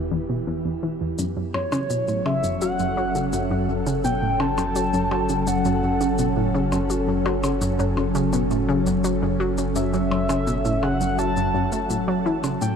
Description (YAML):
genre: ambient, sequencer-driven space music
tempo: 84 BPM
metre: 4/4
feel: straight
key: unclear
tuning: A4 = 439 Hz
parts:
  - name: evolving wavetable pad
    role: sustained chords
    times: 0.0-12.8 s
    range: E3 to A4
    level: -25 LUFS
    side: equal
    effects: chorus, built-in reverb, shimmer reverb
  - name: analog pluck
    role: riff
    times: 0.0-12.7 s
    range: E2 to A3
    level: -25 LUFS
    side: equal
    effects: chorus, ping-pong delay
  - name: round analog bass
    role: bass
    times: 0.0-12.8 s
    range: E1 to F#1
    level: -30 LUFS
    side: equal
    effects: none
  - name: shaker and percussion blips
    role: percussion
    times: 1.2-12.8 s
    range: none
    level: -34 LUFS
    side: left 2 dB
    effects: ping-pong delay
  - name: pulse-width lead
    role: melody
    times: 1.5-12.8 s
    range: C#5 to A5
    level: -27 LUFS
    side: equal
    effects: chorus, shimmer reverb, ping-pong delay
room: moderate huge ambient reverb, RT60 9.3 s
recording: none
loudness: -20 LUFS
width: side -7 dB against mid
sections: 0.0-12.8 A section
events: fade-in on analog synth bass 0.0-12.8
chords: 0.0 Em; 1.2 F#m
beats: 0.47 | 1.19 1.90 2.62 3.33 | 4.04 4.76 5.47 6.19 | 6.90 7.62 8.33 9.04 | 9.76 10.47 11.19 11.90 | 12.62